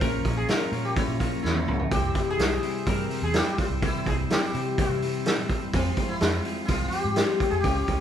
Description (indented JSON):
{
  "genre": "psychedelic rock",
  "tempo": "126 BPM",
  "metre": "4/4",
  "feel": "straight",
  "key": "C phrygian dominant",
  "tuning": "A4 = 439 Hz",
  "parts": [
    { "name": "sitar", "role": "melody", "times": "0.0-8.0 s", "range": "C4 to Bb4", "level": "-29 LUFS", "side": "left 2 dB", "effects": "none" },
    { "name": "combo organ", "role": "sustained chords", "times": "0.0-8.0 s", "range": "C5 to Db6", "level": "-40 LUFS", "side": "right 4 dB", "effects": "spring reverb" },
    { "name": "twelve-string electric guitar", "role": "riff", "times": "0.0-8.0 s", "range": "Bb2 to F4", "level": "-31 LUFS", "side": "left 2 dB", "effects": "none" },
    { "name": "vintage muted fingered electric bass", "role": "bass", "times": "0.0-8.0 s", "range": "Bb1 to C3", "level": "-30 LUFS", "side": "right 1 dB", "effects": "none" },
    { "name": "vintage drum kit", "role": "drums", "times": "0.0-8.0 s", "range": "hi-hat, kick drum, snare drum, toms", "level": "-27 LUFS", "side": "right 1 dB", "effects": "none" }
  ],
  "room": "moderate large studio reverb, RT60 1.0 s",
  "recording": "band playing live in one room",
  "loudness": "-23 LUFS",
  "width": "side -9 dB against mid",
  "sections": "0.0-8.0 A section",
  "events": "drum fill 1.4-1.9",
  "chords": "0.0 Bbm; 1.9 C; 5.7 Fm"
}